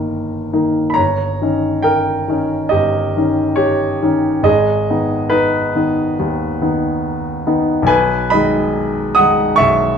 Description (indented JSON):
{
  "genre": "classical, romantic nocturne for solo piano",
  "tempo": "70 BPM",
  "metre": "4/4",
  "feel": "rubato",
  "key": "G# minor",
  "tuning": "A4 = 440 Hz",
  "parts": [
    { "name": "clear baby grand piano", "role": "solo", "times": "0.0-10.0 s", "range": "G1 to D#6", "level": "-14 LUFS", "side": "equal", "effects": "none" }
  ],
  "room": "wet stone room reverb, RT60 1.1 s",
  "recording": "dark, warm production",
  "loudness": "-13 LUFS",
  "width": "side -7 dB against mid",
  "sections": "0.0-10.0 A section",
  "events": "none",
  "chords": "0.0 D#/G; 1.0 D#7/G; 4.5 G#m; 7.9 G#m/B"
}